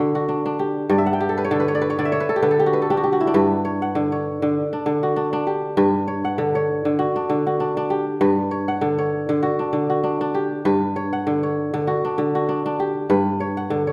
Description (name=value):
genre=west african traditional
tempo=98 BPM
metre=4/4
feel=swing 55% on 16ths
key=G lydian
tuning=A4 = 443 Hz
part: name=kora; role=solo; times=0.0-13.9 s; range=G2 to G5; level=-21 LUFS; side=equal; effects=none
room=wet recital hall reverb, RT60 1.2 s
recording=recorded in a church or concert hall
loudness=-21 LUFS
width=mono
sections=0.0-13.9 A section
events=kora fill 0.9-3.3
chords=0.0 D; 0.9 G5; 2.1 N.C.; 3.3 G; 4.6 D; 5.8 G; 7.0 D; 8.2 G; 9.4 D; 10.7 G; 11.9 D; 13.1 G